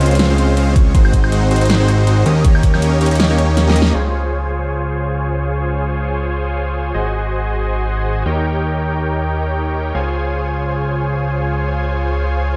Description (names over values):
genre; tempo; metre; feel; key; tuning
future bass; 160 BPM; 4/4; swing 55% on 16ths, half-time; Db major; A4 = 441 Hz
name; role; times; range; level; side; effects
supersaw chords; riff; 0.0-12.6 s; Ab3 to Ab5; -22 LUFS; equal; sidechain pumping, low-pass filter, digital delay
fat analog bass; bass; 0.0-12.6 s; Ab1 to Eb2; -19 LUFS; equal; tube saturation, sidechain pumping
big-room dance drum kit; drums; 0.0-3.9 s; hi-hat, snare drum, woodblock; -23 LUFS; equal; none
electronic kick drum; drums; 0.8-2.7 s; none; -14 LUFS; equal; none
room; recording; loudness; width
light reverb; dark, warm production; -17 LUFS; mono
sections
0.0-3.9 A section; 3.9-12.6 B section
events
drop 0.0-3.9; kick drops out 3.2-3.9; drum fill 3.6-3.9; band accent 3.8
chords
0.0 Dbmaj7; 0.9 Ab7; 2.3 Eb7; 3.9 Dbmaj7; 6.9 Ab7; 8.3 Eb7; 9.9 Dbmaj7